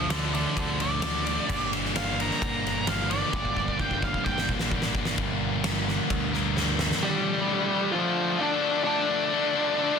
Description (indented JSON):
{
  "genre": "quiet-loud alternative rock",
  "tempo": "130 BPM",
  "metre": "4/4",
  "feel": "straight",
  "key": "G minor",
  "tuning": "A4 = 440 Hz",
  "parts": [
    { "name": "octave-fuzz lead guitar", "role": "melody", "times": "0.0-10.0 s", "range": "F3 to Bb5", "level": "-28 LUFS", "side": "right 2 dB", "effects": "distortion, slapback echo" },
    { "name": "biting overdriven guitar", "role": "riff", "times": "0.0-10.0 s", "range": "G2 to Bb4", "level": "-30 LUFS", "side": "left 15 dB", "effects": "none" },
    { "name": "thick fuzz guitar", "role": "riff", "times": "0.0-7.0 s", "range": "G2 to D4", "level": "-33 LUFS", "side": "right 12 dB", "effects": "distortion" },
    { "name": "growling picked electric bass", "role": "bass", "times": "0.0-6.9 s", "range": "G1 to D2", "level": "-33 LUFS", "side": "left 1 dB", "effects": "overdrive" },
    { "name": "oversized low-tuned drum kit", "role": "drums", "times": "0.1-7.0 s", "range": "crash cymbal, kick drum, ride cymbal, snare drum", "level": "-30 LUFS", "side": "equal", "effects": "none" }
  ],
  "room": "little or no reverb",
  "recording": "dense, heavily limited modern master",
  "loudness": "-24 LUFS",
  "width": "side -6 dB against mid",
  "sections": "0.0-5.2 A section; 5.2-7.0 B section; 7.0-10.0 C section",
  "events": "lead electric guitar solo 0.0-5.2; drum fill 3.3-5.2, 6.6-7.0",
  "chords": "0.0 Dm; 1.5 Gm; 7.0 Dm"
}